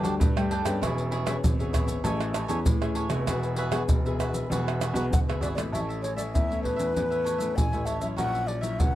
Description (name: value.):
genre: samba and choro.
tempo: 98 BPM.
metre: 4/4.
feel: straight.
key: A major.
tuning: A4 = 441 Hz.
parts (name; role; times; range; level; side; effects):
cavaquinho; accompaniment; 0.0-8.9 s; D4 to G#5; -34 LUFS; right 3 dB; none.
nylon-string guitar; accompaniment; 0.0-8.9 s; G2 to G#4; -33 LUFS; left 4 dB; none.
warm grand piano; bass; 0.0-8.9 s; E1 to A2; -30 LUFS; equal; none.
maracas, pandeiro, surdo and tamborim; percussion; 0.0-8.9 s; none; -27 LUFS; equal; none.
baroque flute; melody; 5.1-8.9 s; B4 to G#5; -29 LUFS; left 2 dB; none.
room: light reverb.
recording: close, detailed microphones.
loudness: -24 LUFS.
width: side -14 dB against mid.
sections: 0.0-5.7 A section; 5.7-8.9 B section.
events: none.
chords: 0.0 Gsus2; 0.8 E6; 2.0 Amaj7; 3.3 Eadd9; 5.7 A; 8.2 F#7/A#.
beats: 0.20 | 0.82 1.43 2.04 2.66 | 3.27 3.88 4.50 5.11 | 5.72 6.34 6.95 7.57 | 8.18 8.79.